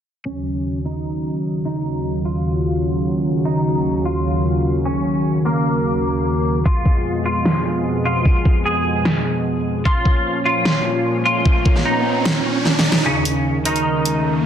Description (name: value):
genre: heavy wobble dubstep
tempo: 150 BPM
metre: 4/4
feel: half-time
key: Eb minor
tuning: A4 = 441 Hz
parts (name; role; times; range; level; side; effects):
- semi-hollow electric guitar; melody; 0.3-14.4 s; Db3 to Ab4; -22 LUFS; equal; ensemble chorus, tape echo
- lush unison pad; sustained chords; 0.3-14.5 s; Eb2 to Db4; -20 LUFS; equal; chorus, sidechain pumping
- electronic kick drum; drums; 6.7-11.7 s; none; -15 LUFS; equal; overdrive
- dubstep drum kit; drums; 7.5-14.1 s; hi-hat, snare drum; -19 LUFS; equal; overdrive, high-pass filter on snare, high-pass filter on hats, high-pass filter on room
- riser; sound effects; 10.9-14.5 s; none; -25 LUFS; right 2 dB; none
room: light reverb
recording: dense, heavily limited modern master, low-pass filter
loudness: -16 LUFS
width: side -9 dB against mid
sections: 0.3-13.1 A section; 13.1-14.5 B section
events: filter sweep 0.3-13.1; riser 10.9-13.1, 13.1-14.5; kick drops out 12.7-13.1; drum fill 12.7-13.1; build-up 13.1-14.5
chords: 0.3 Ebm7; 6.7 Fdim; 9.9 Bbm; 13.1 Eb5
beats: | 0.26 0.66 1.05 1.46 | 1.85 2.25 2.65 3.06 | 3.46 3.85 4.25 4.66 | 5.05 5.46 5.86 6.25 | 6.66 7.05 7.46 7.86 | 8.26 8.65 9.05 9.46 | 9.86 10.26 10.65 11.05 | 11.46 11.86 12.26 12.65 | 13.05 13.46 13.86 14.26